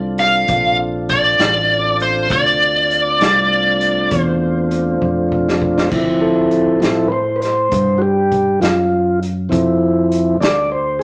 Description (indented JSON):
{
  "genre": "slow blues",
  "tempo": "66 BPM (dotted quarters)",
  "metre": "12/8",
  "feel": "straight",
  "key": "D minor",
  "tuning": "A4 = 440 Hz",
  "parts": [
    { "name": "mellow tonewheel organ", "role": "sustained chords", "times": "0.0-11.0 s", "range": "F3 to D5", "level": "-19 LUFS", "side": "equal", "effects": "slow rotary speaker" },
    { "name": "fingered electric bass", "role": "bass", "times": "0.0-11.0 s", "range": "A1 to A2", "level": "-24 LUFS", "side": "equal", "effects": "none" },
    { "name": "smooth overdriven lead guitar", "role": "melody", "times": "0.2-5.3 s", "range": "C5 to F5", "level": "-17 LUFS", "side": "equal", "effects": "none" },
    { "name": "vintage drum kit", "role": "drums", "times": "0.2-10.6 s", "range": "crash cymbal, hi-hat, kick drum, snare drum", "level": "-25 LUFS", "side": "equal", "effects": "none" }
  ],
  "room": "wet studio reverb, RT60 0.8 s",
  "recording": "none",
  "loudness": "-16 LUFS",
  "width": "mono",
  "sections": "0.0-5.9 A section; 5.9-11.0 B section",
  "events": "drum fill 5.0-5.9; tonewheel organ solo 5.9-11.0",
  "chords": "0.0 Dm7"
}